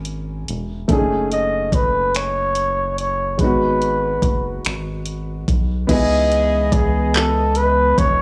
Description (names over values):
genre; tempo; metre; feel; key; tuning
slow six-eight R&B; 48 BPM (dotted quarters); 6/8; straight; C# minor; A4 = 440 Hz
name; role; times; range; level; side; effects
warm baby grand piano; accompaniment; 0.0-8.2 s; G#3 to G#5; -27 LUFS; equal; none
rubbery square bass; bass; 0.0-8.2 s; E1 to C#2; -26 LUFS; equal; none
smooth R&B drum kit; drums; 0.1-8.2 s; crash cymbal, finger snaps, handclaps, hi-hat, kick drum; -23 LUFS; equal; none
breathy flugelhorn; melody; 0.9-8.2 s; G#4 to D#5; -21 LUFS; equal; analog delay
chorused pulse-width pad; sustained chords; 5.9-8.2 s; C#3 to D#5; -29 LUFS; equal; none
mellow horn section; stabs; 5.9-7.1 s; G#3 to G#4; -31 LUFS; equal; none
room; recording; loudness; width
small room ambience; dry, gritty hardware recording, transformer saturation, small room reverb; -19 LUFS; mono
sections
0.0-5.9 A section; 5.9-8.2 B section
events
none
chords
0.0 F#9 (rootless); 0.9 F#m69; 3.4 G#m7; 5.9 C#m9